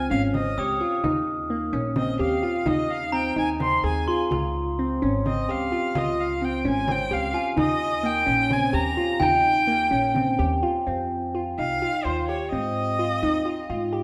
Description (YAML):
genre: contemporary instrumental, chamber music in an uneven meter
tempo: 256 BPM (eighths)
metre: 7/8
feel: straight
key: unclear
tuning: A4 = 440 Hz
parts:
  - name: clear violin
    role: melody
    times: 0.0-13.9 s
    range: C5 to C6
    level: -29 LUFS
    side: equal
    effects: none
  - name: upright bass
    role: bass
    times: 0.0-14.0 s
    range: Ab1 to Ab2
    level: -33 LUFS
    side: equal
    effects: none
  - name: harp-like synth pluck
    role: arpeggios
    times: 0.1-14.0 s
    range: Bb3 to Ab4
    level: -28 LUFS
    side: equal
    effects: chorus
  - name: frame drum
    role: percussion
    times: 0.1-10.4 s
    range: none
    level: -36 LUFS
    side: equal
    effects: none
  - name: glockenspiel with hard plastic mallets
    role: texture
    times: 0.6-4.5, 7.3-9.7 s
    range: G5 to Eb6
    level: -31 LUFS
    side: equal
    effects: none
room: wet recital hall reverb, RT60 1.5 s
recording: none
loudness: -24 LUFS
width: mono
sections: 0.0-10.9 A section; 10.9-14.0 B section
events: none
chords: 0.0 Db; 1.0 Eb5; 2.7 Ab/Eb; 4.3 Db; 7.6 Eb; 10.9 F5; 12.5 Ab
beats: 0.11 0.34 0.58 0.81 | 1.04 1.27 1.50 1.74 1.97 2.20 2.43 | 2.66 2.90 3.13 3.37 3.60 3.84 4.08 | 4.31 4.55 4.79 5.02 5.26 5.49 5.72 | 5.96 6.19 6.42 6.65 6.88 7.11 7.34 | 7.58 7.81 8.04 8.27 8.51 8.74 8.97 | 9.21 9.44 9.68 9.91 10.15 10.39 10.63 | 10.87 11.11 11.35 11.59 11.82 12.06 12.29 | 12.53 12.76 12.99 13.23 13.46 13.70 13.93